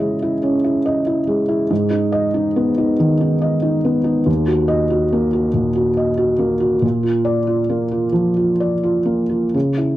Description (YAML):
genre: neoclassical minimalist piano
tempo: 93 BPM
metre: 4/4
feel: rubato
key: unclear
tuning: A4 = 440 Hz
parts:
  - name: felt-muted upright piano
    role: solo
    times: 0.0-10.0 s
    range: D#2 to D#5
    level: -15 LUFS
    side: equal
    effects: none
room: light reverb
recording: worn, warbling old tape, cassette tape, warbly pitch drift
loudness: -15 LUFS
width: side -15 dB against mid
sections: 0.0-10.0 A section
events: none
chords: 0.0 C#madd9; 1.7 G#m; 4.3 D#m; 6.8 A#